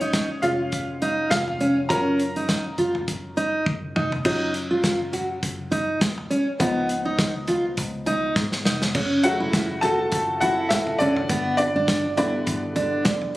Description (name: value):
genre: piano-driven pop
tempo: 102 BPM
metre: 4/4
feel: swing 56% on 16ths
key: unclear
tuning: A4 = 441 Hz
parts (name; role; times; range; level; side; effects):
- clear upright piano; accompaniment; 0.0-13.4 s; C#3 to Bb5; -25 LUFS; left 1 dB; none
- fingerpicked steel-string acoustic guitar; riff; 0.0-13.0 s; Cb4 to Gb4; -24 LUFS; right 1 dB; none
- vintage muted picked electric bass; bass; 0.0-13.3 s; F1 to Ab2; -33 LUFS; equal; none
- natural country drum kit; drums; 0.0-13.3 s; crash cymbal, hi-hat, kick drum, snare drum, toms; -26 LUFS; equal; none
room: light reverb, small room ambience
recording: recorded on a phone in the room, studio reverb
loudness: -21 LUFS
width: side -17 dB against mid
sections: 0.0-4.3 A section; 4.3-8.9 B section; 8.9-13.4 C section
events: upright piano solo 0.0-4.3, 4.3-8.9, 8.9-13.4; drum fill 3.7-4.3, 8.4-8.9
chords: 0.0 Db/F; 1.9 Ebm7/Gb; 6.6 Db7; 8.9 F#m; 11.3 G